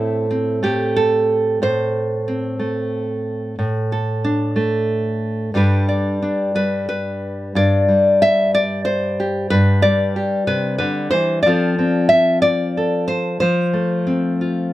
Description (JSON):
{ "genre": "folk, solo fingerstyle acoustic guitar", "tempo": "61 BPM (dotted quarters)", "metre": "6/8", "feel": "straight", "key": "G mixolydian", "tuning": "A4 = 441 Hz", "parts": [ { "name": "nylon-string guitar", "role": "solo", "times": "0.0-14.7 s", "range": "G2 to E5", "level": "-16 LUFS", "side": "equal", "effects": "none" } ], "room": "light reverb", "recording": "none", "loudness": "-16 LUFS", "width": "side -15 dB against mid", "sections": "0.0-7.6 A section; 7.6-14.7 B section", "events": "none", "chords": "0.0 Am; 3.6 D5/A; 5.6 G; 11.4 F", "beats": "0.64 | 1.62 2.61 | 3.59 4.57 | 5.56 6.56 | 7.57 8.54 | 9.51 10.48 | 11.45 12.43 | 13.41 14.39" }